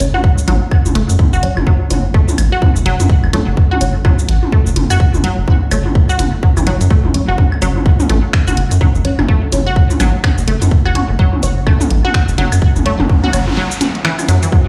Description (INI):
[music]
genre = minimal techno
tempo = 126 BPM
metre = 4/4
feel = swing 60% on 16ths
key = F# minor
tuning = A4 = 440 Hz
[part]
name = filtered dub chord stab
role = stabs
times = 0.0-13.4 s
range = F#3 to C#5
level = -26 LUFS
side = equal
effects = phaser, ensemble chorus, dub echo
[part]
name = rubbery square bass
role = bass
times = 0.0-14.4 s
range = F#1 to F#2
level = -17 LUFS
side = equal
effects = sidechain pumping
[part]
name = garage drum kit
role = drums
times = 0.0-14.5 s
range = cabasa, finger snaps, hi-hat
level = -25 LUFS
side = equal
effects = none
[part]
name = resonant blip pluck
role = riff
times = 0.1-14.6 s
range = E3 to F#4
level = -23 LUFS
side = equal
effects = chorus, sidechain pumping, digital delay
[part]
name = electronic toms and claves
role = percussion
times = 0.1-14.3 s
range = none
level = -23 LUFS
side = equal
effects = dub echo
[part]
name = electronic kick drum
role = drums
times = 0.2-14.6 s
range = none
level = -14 LUFS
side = equal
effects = none
[part]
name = noise sweep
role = sound effects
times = 12.9-14.5 s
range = none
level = -29 LUFS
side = equal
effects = none
[sound]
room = light reverb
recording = played on a big sound system in a bare room, large studio reverb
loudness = -13 LUFS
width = mono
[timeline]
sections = 0.0-14.7 A section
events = filter sweep on synth stab 0.0-14.7; noise sweep 12.9-14.5; break 13.6-14.5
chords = 0.0 F#5